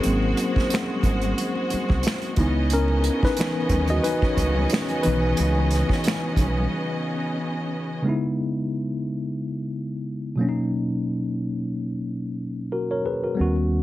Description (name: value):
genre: R&B, neo-soul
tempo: 90 BPM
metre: 4/4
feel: swing 57% on 16ths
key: C# dorian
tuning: A4 = 440 Hz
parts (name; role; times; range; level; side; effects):
- tine electric piano; accompaniment; 0.0-13.8 s; B2 to D#5; -24 LUFS; left 1 dB; medium stereo tremolo
- bright studio string section; sustained chords; 0.0-8.0 s; C#3 to D#5; -28 LUFS; equal; none
- unplugged drum kit; drums; 0.0-6.5 s; finger snaps, hi-hat, kick drum, snare drum; -25 LUFS; right 1 dB; none
- congas; percussion; 0.0-6.7 s; none; -33 LUFS; right 3 dB; none
- deep dub fingered electric bass; bass; 0.1-6.7, 13.4-13.8 s; G#1 to D#2; -23 LUFS; equal; none
room: light reverb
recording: heavily compressed radio sound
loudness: -22 LUFS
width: side -15 dB against mid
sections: 0.0-8.0 A section; 8.0-13.8 B section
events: tine electric piano solo 0.0-8.0; break 6.7-8.0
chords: 0.0 G#9; 2.4 C#m9; 10.4 Bmaj9